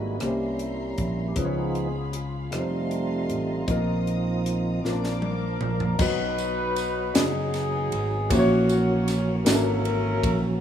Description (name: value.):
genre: slow gospel.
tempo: 52 BPM (dotted quarters).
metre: 6/8.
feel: straight.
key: unclear.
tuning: A4 = 440 Hz.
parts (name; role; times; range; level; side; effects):
dark upright piano; accompaniment; 0.0-10.6 s; Ab2 to Db5; -29 LUFS; left 3 dB; none.
dark studio string section; sustained chords; 0.0-6.0 s; Db4 to Eb6; -41 LUFS; left 2 dB; none.
tonewheel organ; sustained chords; 0.0-10.6 s; Fb3 to Ab4; -30 LUFS; right 3 dB; slow rotary speaker, overdrive, chorus vibrato.
fingered electric bass; bass; 0.0-10.6 s; F1 to Db2; -28 LUFS; equal; none.
crisp fusion drum kit; drums; 0.2-10.4 s; crash cymbal, hi-hat, kick drum, ride cymbal, rim click, snare drum, toms; -28 LUFS; equal; none.
mellow horn section; melody; 4.9-10.4 s; B3 to B4; -28 LUFS; left 1 dB; none.
tambourine; percussion; 6.0-9.8 s; none; -36 LUFS; right 10 dB; none.
room: little or no reverb.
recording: rough home demo mix, small room ambience.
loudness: -22 LUFS.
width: side -9 dB against mid.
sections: 0.0-6.0 A section; 6.0-10.6 B section.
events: tonewheel organ solo 0.0-6.0; drum fill 4.8-6.0.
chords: 0.2 C7b9; 1.4 Db7; 2.5 F7; 3.7 Bbsus4; 4.8 Bb; 6.0 B; 8.3 Gb7/Bb.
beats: 0.21 | 1.37 2.53 | 3.69 4.84 | 6.00 7.15 | 8.31 9.46.